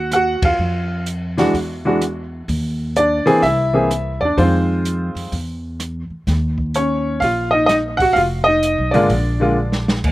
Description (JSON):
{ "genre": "jazz piano trio", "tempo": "127 BPM", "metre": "4/4", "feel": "swing 66% on 8ths", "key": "unclear", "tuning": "A4 = 440 Hz", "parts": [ { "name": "clear upright piano", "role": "melody", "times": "0.0-9.8 s", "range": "D3 to F#5", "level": "-16 LUFS", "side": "equal", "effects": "slapback echo" }, { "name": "upright bass", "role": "bass", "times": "0.0-10.1 s", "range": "F1 to F2", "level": "-21 LUFS", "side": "equal", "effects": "none" }, { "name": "open jazz drum kit", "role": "drums", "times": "0.1-10.1 s", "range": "crash cymbal, hi-hat, kick drum, ride cymbal, rim click, snare drum", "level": "-25 LUFS", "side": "right 1 dB", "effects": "none" } ], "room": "little or no reverb", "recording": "recorded outdoors, with no room sound", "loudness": "-15 LUFS", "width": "side -17 dB against mid", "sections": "0.0-10.0 A section", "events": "band accent 0.4; drum fill 9.6-10.0", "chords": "0.0 B (rootless); 0.6 N.C.; 2.5 Eb5; 3.4 C; 4.4 Fm7; 5.3 N.C.; 6.3 Eb7sus2; 8.2 Fm7b5; 9.1 Bb" }